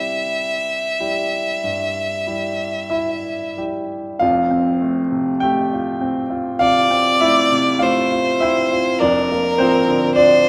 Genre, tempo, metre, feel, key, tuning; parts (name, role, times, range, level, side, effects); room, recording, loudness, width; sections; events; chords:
classical, romantic duo for violin and grand piano; 45-52 BPM; 4/4; rubato; F major; A4 = 440 Hz
clear violin; melody; 0.0-10.5 s; Bb4 to E5; -21 LUFS; equal
bright grand piano; accompaniment; 0.0-10.5 s; F1 to C6; -20 LUFS; equal
wet recital hall reverb, RT60 1.7 s; -18 LUFS; mono
0.0-4.2 A section; 4.2-10.5 B section
0.0 C; 4.2 F; 9.0 Bb/F